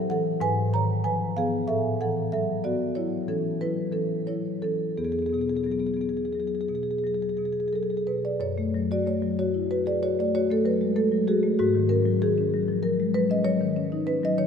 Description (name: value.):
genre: classical, contemporary piece for solo marimba.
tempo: 85-98 BPM.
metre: 5/4.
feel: rubato.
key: F# minor.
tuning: A4 = 441 Hz.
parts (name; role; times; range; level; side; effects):
marimba with soft mallets; solo; 0.0-14.5 s; E2 to A#5; -23 LUFS; left 1 dB; none.
room: wet cathedral reverb, RT60 5.1 s.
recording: none.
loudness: -23 LUFS.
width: side -7 dB against mid.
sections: 0.0-8.4 A section; 8.4-14.5 B section.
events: none.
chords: 0.4 G#m6; 1.7 A69; 5.0 Eadd9; 8.4 F#madd9; 11.6 G#7sus4.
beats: 0.42 1.07 | 1.70 2.33 2.97 3.61 4.28 | 4.98 5.67 6.36 7.05 7.73 | 8.40 9.05 9.69 10.32 10.95 | 11.58 12.21 12.84 13.46 14.07.